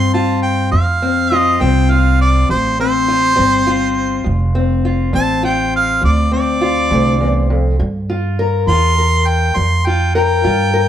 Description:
acoustic country blues, solo or duo; 68 BPM (dotted quarters); 12/8; straight; D minor; A4 = 440 Hz
warm harmonica; melody; 0.0-10.9 s; C5 to C6; -16 LUFS; right 2 dB
fingerpicked steel-string acoustic guitar; accompaniment; 0.0-10.9 s; D2 to Bb4; -17 LUFS; left 4 dB
upright bass; bass; 0.0-10.9 s; F1 to G2; -16 LUFS; right 1 dB
moderate stone room reverb, RT60 1.1 s; band playing live in one room; -12 LUFS; side -10 dB against mid
0.0-10.9 A section
harmonica solo 0.0-10.9
0.0 Dm7; 7.8 Gm7

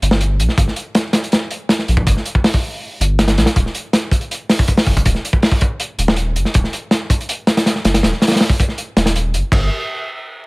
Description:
drum and bass, jungle; 161 BPM; 4/4; straight; A4 = 440 Hz
saturated sub bass; bass; 0.0-9.7 s; Eb1 to Bb1; -17 LUFS; equal
crunchy breakbeat drum kit; drums; 0.0-9.6 s; crash cymbal, hi-hat, kick drum, snare drum; -15 LUFS; equal
little or no reverb; vinyl crackle; -14 LUFS; side -28 dB against mid
0.0-9.5 A section

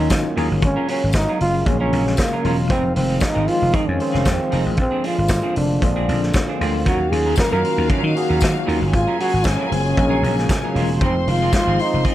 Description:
disco; 116 BPM; 4/4; straight; Eb dorian; A4 = 440 Hz
breathy trombone; melody; 0.0-12.1 s; Bb3 to Bb4; -22 LUFS; equal
semi-hollow electric guitar; accompaniment; 0.0-12.1 s; F3 to Bb4; -28 LUFS; right 5 dB; wide subtle chorus
tine electric piano; accompaniment; 0.0-12.1 s; C3 to Ab4; -26 LUFS; left 2 dB; overdrive, fast stereo tremolo
mellow French horn section; sustained chords; 0.0-12.1 s; Db3 to F5; -29 LUFS; equal
vintage slap bass; bass; 0.0-12.1 s; Fb1 to Eb3; -21 LUFS; equal
vintage drum kit; drums; 0.1-12.1 s; hi-hat, kick drum, snare drum; -22 LUFS; equal
tambourine; percussion; 0.1-11.7 s; -34 LUFS; left 6 dB
rich studio string section; second line; 6.9-12.1 s; Gb4 to C6; -26 LUFS; left 2 dB
light reverb, small room ambience; dark, warm production; -16 LUFS; side -13 dB against mid
0.0-12.1 A section
0.0 Ebm9; 0.6 Ab13sus4; 2.7 Fm7; 4.8 Bb9; 6.9 Ebm9; 8.9 Ab13sus4; 11.0 Fm7

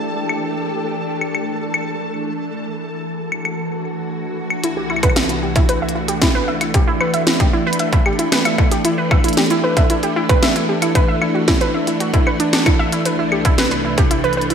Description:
IDM; 114 BPM; 4/4; straight; A4 = 442 Hz
soft string machine; sustained chords; 0.0-14.5 s; C2 to G4; -21 LUFS; equal; ensemble chorus, sidechain pumping
flickering grainy texture; texture; 0.0-4.6 s; A4; -29 LUFS; left 1 dB; built-in reverb
glitchy drum kit; drums; 0.3-14.5 s; claves, hi-hat, snare drum; -20 LUFS; equal; low-pass filter on perc, studio reverb, low-pass filter on snare, low-pass filter on hats, gated reverb, ping-pong delay
warbly dusty pluck; arpeggios; 4.6-14.5 s; D4 to E5; -19 LUFS; right 2 dB; chorus, digital delay
electronic kick drum; drums; 5.0-14.1 s; -16 LUFS; equal; distortion, studio reverb
moderate lush hall reverb, RT60 1.7 s, digital ambience; bright 1980s-style digital production; -15 LUFS; side -7 dB against mid
0.0-4.6 A section; 4.6-14.5 B section
0.0 A7sus4/E; 2.5 D; 4.6 Cmaj9; 6.7 Em9; 8.8 A9sus4/E; 11.0 D; 13.1 Cmaj9

